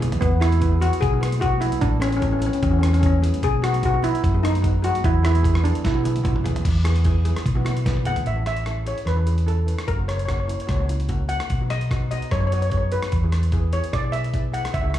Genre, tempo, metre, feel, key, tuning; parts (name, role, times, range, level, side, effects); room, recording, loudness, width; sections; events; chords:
calypso; 149 BPM; 4/4; straight; A4 = 440 Hz
steel pan; accompaniment; 0.0-15.0 s; A#3 to B4; -32 LUFS; right 2 dB; slapback echo
hollow-body short-scale fingered electric bass; bass; 0.0-15.0 s; F#1 to F#2; -21 LUFS; equal
dusty soul sampler-style drum kit; drums; 0.0-15.0 s; crash cymbal, hi-hat, kick drum, rim click, snare drum, toms; -26 LUFS; equal
congas; percussion; 0.1-8.2 s; -35 LUFS; right 3 dB
steel pan; melody; 0.2-15.0 s; B3 to F#5; -25 LUFS; left 1 dB; slapback echo, digital delay
digital ambience; live gig heard through the venue's PA, club reverb; -19 LUFS; side -12 dB against mid
0.0-6.6 A section; 6.6-8.3 B section; 8.3-15.0 C section
drum fill 0.0, 5.8-6.6, 7.9-8.3
0.0 E; 1.8 Asus2; 3.4 B; 5.0 E; 8.3 Amaj7; 9.9 F#7; 11.5 B; 13.1 E